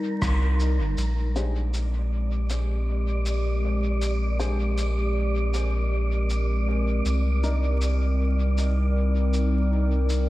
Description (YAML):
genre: ambient dub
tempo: 79 BPM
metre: 4/4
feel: straight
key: unclear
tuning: A4 = 441 Hz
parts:
  - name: warbly tape-like pad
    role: sustained chords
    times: 0.0-10.3 s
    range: G3 to D5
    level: -30 LUFS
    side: equal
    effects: chorus, built-in reverb
  - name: wind-like tuned noise texture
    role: texture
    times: 0.0-10.3 s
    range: Bb4 to D5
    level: -35 LUFS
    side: right 1 dB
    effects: built-in reverb, wide subtle chorus
  - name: round analog bass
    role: bass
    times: 0.2-10.3 s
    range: G1 to C2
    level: -23 LUFS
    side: equal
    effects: none
  - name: electronic rim click and shaker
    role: drums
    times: 0.2-10.2 s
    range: none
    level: -37 LUFS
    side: left 1 dB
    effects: studio reverb, dub echo
  - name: warm upright piano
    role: stabs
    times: 1.4-7.7 s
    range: D4 to C5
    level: -38 LUFS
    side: left 3 dB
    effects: low-pass filter, dub echo
room: light reverb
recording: vinyl crackle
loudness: -22 LUFS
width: side -17 dB against mid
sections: 1.0-10.3 A section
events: band accent 0.2-0.6; filter sweep on upright piano 1.0-10.3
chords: 0.0 Cm9; 1.0 Bb13; 7.1 Cm9